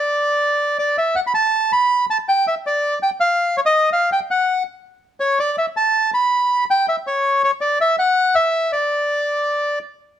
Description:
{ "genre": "tango", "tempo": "162 BPM", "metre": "3/4", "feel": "rubato", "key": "unclear", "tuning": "A4 = 439 Hz", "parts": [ { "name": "bandoneon", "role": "solo", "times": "0.0-9.8 s", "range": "C#5 to B5", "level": "-16 LUFS", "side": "equal", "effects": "none" } ], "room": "light reverb", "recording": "none", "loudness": "-16 LUFS", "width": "side -10 dB against mid", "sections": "0.0-1.1 A section; 1.1-10.0 A section", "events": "none", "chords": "none", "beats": "| 0.01 0.38 0.75 | 1.13 1.51 1.88 | 2.25 2.62 2.99 | 3.35 3.72 4.08 | 4.45 4.82 5.19 | 5.56 5.94 6.31 | 6.67 7.04 7.40 | 7.77 8.13 8.50 | 8.87 9.24 9.62" }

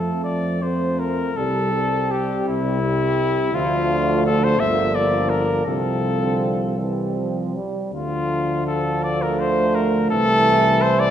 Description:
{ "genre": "classical, hymn-like piece for brass band", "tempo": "51-58 BPM (dotted quarters)", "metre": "6/8", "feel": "rubato", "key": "F major", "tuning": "A4 = 439 Hz", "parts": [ { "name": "mellow cornet", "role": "melody", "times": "0.0-11.1 s", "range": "E4 to E5", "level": "-21 LUFS", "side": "left 2 dB", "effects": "none" }, { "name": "dark French horn section", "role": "second line", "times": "0.0-11.1 s", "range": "A3 to C4", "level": "-26 LUFS", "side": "right 4 dB", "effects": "none" }, { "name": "clear euphonium", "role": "accompaniment", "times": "0.0-11.1 s", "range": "E3 to A3", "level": "-27 LUFS", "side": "equal", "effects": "none" }, { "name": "warm trombone", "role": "accompaniment", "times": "0.0-11.1 s", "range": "C3 to G3", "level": "-27 LUFS", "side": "right 2 dB", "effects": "none" }, { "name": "mellow tuba", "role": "bass", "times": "0.0-11.1 s", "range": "G1 to F2", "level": "-25 LUFS", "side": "equal", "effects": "none" } ], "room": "wet concert hall reverb, RT60 1.7 s", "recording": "recorded in a church or concert hall, nothing above 11.0 kHz", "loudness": "-18 LUFS", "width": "side -10 dB against mid", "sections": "0.0-11.1 A section", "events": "none", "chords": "0.0 F; 1.4 C; 3.5 Dm; 4.6 Gm7; 5.7 F/C; 6.8 C; 7.9 Dm; 10.1 Am/C", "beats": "0.25 | 1.36 2.46 | 3.54 4.60 | 5.67 6.79 | 7.94 9.05 | 10.12" }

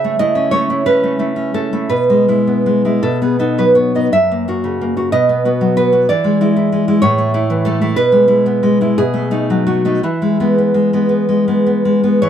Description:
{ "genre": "romantic piece for solo classical guitar", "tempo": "52-65 BPM (dotted quarters)", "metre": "6/8", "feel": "rubato", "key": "E major", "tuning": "A4 = 440 Hz", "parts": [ { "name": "nylon-string guitar", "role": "solo", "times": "0.0-12.3 s", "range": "F#2 to E5", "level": "-12 LUFS", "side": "equal", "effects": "none" } ], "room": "small room reverb", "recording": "dry, close 1970s-style studio recording", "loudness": "-12 LUFS", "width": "side -9 dB against mid", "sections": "0.0-12.2 A section", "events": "none", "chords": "0.0 A/C#; 1.9 E/B; 3.0 B; 4.1 F#7; 5.1 B; 6.1 E7; 7.0 A; 8.0 E/B; 9.0 B7; 10.0 E", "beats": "0.84 | 1.91 3.03 | 4.11 5.12 | 6.09 7.02 | 7.97 8.96 | 10.02 11.09 | 12.20" }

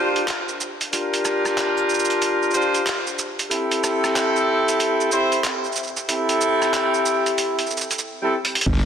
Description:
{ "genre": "glitch hop", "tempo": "93 BPM", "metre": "4/4", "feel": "swing 63% on 16ths", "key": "unclear", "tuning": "A4 = 440 Hz", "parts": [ { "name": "warm horn section", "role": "stabs", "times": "0.0-8.9 s", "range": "C4 to C5", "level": "-20 LUFS", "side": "equal", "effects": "sidechain pumping, low-pass filter, tape echo" }, { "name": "boom bap sampler-style drum kit", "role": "drums", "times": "0.2-8.8 s", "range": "crash cymbal, handclaps, hi-hat, rim click, shaker", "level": "-25 LUFS", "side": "right 2 dB", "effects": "high-pass filter on hats, small room ambience, soft clipping on snare, high-pass filter on snare, high-pass filter on perc, high-pass filter on cymbals" }, { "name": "wobble bass", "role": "bass", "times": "8.7-8.9 s", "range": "G1", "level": "-19 LUFS", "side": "equal", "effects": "chorus, tube saturation" }, { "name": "electronic kick drum", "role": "drums", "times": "8.7-8.8 s", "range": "none", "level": "-22 LUFS", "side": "equal", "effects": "small room ambience" } ], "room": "wet plate reverb, RT60 2.4 s", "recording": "dense, heavily limited modern master, vinyl crackle", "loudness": "-19 LUFS", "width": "side -8 dB against mid", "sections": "0.0-8.7 A section", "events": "build-up 0.0-8.7; drum fill 8.3-8.7", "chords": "0.0 Gm7; 3.5 Am7", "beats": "0.28 | 0.93 1.57 2.21 2.86 | 3.51 4.15 4.80 5.44 | 6.09 6.73 7.38 8.02 | 8.67" }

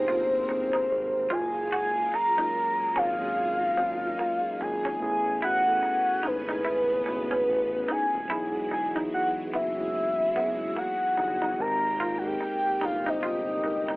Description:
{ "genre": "R&B, neo-soul", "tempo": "73 BPM", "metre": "4/4", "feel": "swing 60% on 16ths", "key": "unclear", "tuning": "A4 = 440 Hz", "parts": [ { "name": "soft octave-layered synth lead", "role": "melody", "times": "0.0-14.0 s", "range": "B4 to Bb5", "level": "-26 LUFS", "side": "equal", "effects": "chorus, phaser" }, { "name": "electric guitar through a small old amp", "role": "second line", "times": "0.0-14.0 s", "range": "Bb3 to Gb4", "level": "-32 LUFS", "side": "right 1 dB", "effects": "phaser" }, { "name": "mellow tine electric piano", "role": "accompaniment", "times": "0.0-14.0 s", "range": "Gb3 to C5", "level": "-33 LUFS", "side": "equal", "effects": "medium stereo tremolo" }, { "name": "string machine, violins", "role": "sustained chords", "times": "0.0-14.0 s", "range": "Bb2 to G#5", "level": "-39 LUFS", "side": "equal", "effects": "ensemble chorus" }, { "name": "smooth synth bass", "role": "bass", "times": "0.0-14.0 s", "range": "Eb1 to A1", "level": "-39 LUFS", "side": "equal", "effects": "none" } ], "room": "moderate studio reverb, RT60 0.5 s", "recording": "telephone sound", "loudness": "-24 LUFS", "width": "side -22 dB against mid", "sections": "0.0-14.0 A section", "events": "none", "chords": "0.0 Abmaj9; 1.3 Gbmaj9; 5.0 Amaj9; 8.3 Emaj9; 11.6 Abmaj9", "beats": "0.07 0.89 | 1.71 2.54 3.36 4.18 | 5.00 5.82 6.65 7.47 | 8.29 9.11 9.93 10.76 | 11.58 12.40 13.22" }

